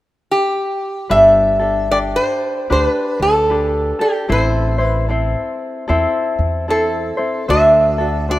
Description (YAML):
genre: Hawaiian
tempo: 75 BPM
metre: 4/4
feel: swing 62% on 8ths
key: G major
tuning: A4 = 440 Hz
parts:
  - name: metal-body resonator slide guitar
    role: melody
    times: 0.3-8.4 s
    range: G4 to E5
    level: -15 LUFS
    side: equal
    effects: none
  - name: tenor ukulele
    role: accompaniment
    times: 1.1-8.4 s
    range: C4 to C5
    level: -20 LUFS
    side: left 2 dB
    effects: none
  - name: upright bass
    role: bass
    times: 1.1-8.4 s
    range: G1 to E2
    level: -20 LUFS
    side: right 1 dB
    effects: none
room: moderate lush hall reverb, RT60 3.0 s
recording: rough home demo mix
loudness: -14 LUFS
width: side -16 dB against mid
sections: 0.0-1.1 A section; 1.1-8.4 B section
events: none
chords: 0.0 N.C.; 1.1 Gadd9; 4.3 Am; 7.5 D7